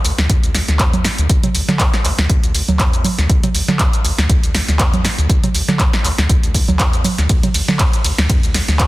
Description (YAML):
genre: acid house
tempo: 120 BPM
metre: 4/4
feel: swing 56% on 16ths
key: unclear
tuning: A4 = 440 Hz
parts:
  - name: overdriven acid bass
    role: riff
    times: 0.0-8.9 s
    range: D2 to D3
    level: -19 LUFS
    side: equal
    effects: sidechain pumping
  - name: punchy analog drum machine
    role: drums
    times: 0.0-8.9 s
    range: congas, handclaps, hi-hat, ride cymbal, shaker, snare drum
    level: -17 LUFS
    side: right 1 dB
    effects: none
  - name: electronic kick drum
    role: drums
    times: 0.3-8.9 s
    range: none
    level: -16 LUFS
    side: equal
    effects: none
room: little or no reverb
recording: dense, heavily limited modern master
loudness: -13 LUFS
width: side -18 dB against mid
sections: 0.0-8.9 A section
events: none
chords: none